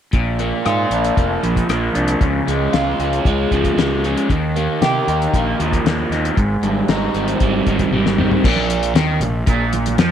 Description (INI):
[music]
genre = psychedelic rock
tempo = 116 BPM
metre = 4/4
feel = straight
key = unclear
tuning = A4 = 437 Hz
[part]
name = crunchy overdriven guitar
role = riff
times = 0.1-10.1 s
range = Ab2 to G4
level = -18 LUFS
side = right 1 dB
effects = phaser
[part]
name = fuzz fingered electric bass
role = bass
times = 0.1-10.1 s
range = F1 to C3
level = -22 LUFS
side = equal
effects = overdrive
[part]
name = cloth-damped thuddy drum kit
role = drums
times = 0.1-10.1 s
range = crash cymbal, hi-hat, kick drum, rim click, snare drum, toms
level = -19 LUFS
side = left 2 dB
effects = none
[part]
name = congas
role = percussion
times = 8.6-10.0 s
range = none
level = -28 LUFS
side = right 8 dB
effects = none
[sound]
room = light reverb, studio ambience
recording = 1960s-style stereo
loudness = -15 LUFS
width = side -9 dB against mid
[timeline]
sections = 0.1-8.4 A section; 8.4-10.1 B section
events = drum fill 7.9-8.4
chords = 0.1 Bb; 2.2 Db; 4.3 Ebadd9; 6.4 Abmaj7; 8.4 Bb5